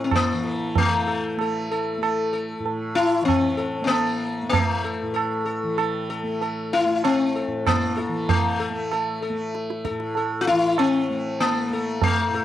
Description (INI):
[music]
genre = indian classical, Hindustani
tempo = 96 BPM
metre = 3/4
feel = straight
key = unclear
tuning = A4 = 444 Hz
[part]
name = sitar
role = melody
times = 0.0-12.4 s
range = A3 to A4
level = -23 LUFS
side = left 4 dB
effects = cassette tape
[part]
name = tanpura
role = drone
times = 0.0-12.4 s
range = A2 to A3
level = -30 LUFS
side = right 2 dB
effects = none
[part]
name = tabla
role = percussion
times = 0.1-12.2 s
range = none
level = -26 LUFS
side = right 6 dB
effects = none
[sound]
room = light reverb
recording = home recording on cassette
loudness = -21 LUFS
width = side -12 dB against mid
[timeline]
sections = 0.8-12.4 A section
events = none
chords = none